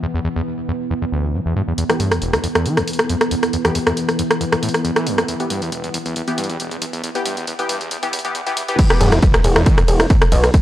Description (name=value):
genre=driving peak-time techno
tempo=137 BPM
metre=4/4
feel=straight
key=E minor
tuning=A4 = 439 Hz
part: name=screaming distorted acid line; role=riff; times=0.0-10.6 s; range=E1 to E3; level=-23 LUFS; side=equal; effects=distortion, chorus, sidechain pumping, tape echo
part: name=deep dark ambient pad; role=drone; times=0.0-8.8 s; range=E3 to B3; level=-25 LUFS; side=equal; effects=chorus, built-in reverb, sidechain pumping
part: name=techno drum kit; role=drums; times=1.8-10.6 s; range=crash cymbal, hi-hat, ride cymbal, rim click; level=-20 LUFS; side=equal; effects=overdrive, low-pass filter on hats, studio reverb, low-pass filter on snare, low-pass filter on cymbals
part: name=supersaw stab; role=stabs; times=1.9-9.1 s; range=E3 to G4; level=-25 LUFS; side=left 2 dB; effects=vintage 12-bit sampler grit, sidechain pumping, low-pass filter, tape echo
part: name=electronic kick drum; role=drums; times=8.8-10.6 s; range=none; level=-13 LUFS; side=equal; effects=overdrive, studio reverb
part: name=gritty driven synth bass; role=bass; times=9.0-10.5 s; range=E1 to B1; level=-15 LUFS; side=equal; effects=distortion, sidechain pumping
room=light reverb, digital ambience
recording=dry, gritty hardware recording, high-pass filter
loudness=-16 LUFS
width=side -13 dB against mid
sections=0.0-1.8 A section; 1.8-8.8 B section; 8.8-10.6 C section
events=build-up 1.8-8.8; filter sweep on acid bass 1.8-8.8; filter sweep on supersaw synth 1.8-8.8; filter sweep 1.8-8.8; drop 8.8-10.6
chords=0.0 E5; 1.8 Em